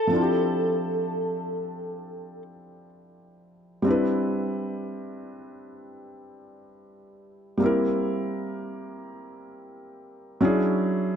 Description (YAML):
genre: R&B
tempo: free time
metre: none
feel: none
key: C major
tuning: A4 = 444 Hz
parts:
  - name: direct-recorded clean electric guitar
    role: melody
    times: 0.0-2.4 s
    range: A4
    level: -27 LUFS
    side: equal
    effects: analog chorus, tape echo
  - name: felt-muted upright piano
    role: accompaniment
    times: 0.0-11.2 s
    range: F3 to B4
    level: -25 LUFS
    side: equal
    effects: none
room: light reverb, small room ambience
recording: none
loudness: -23 LUFS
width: side -8 dB against mid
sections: 0.0-11.2 A section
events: none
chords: 0.1 Dm11; 3.9 Cmaj9; 7.6 C7; 10.4 E13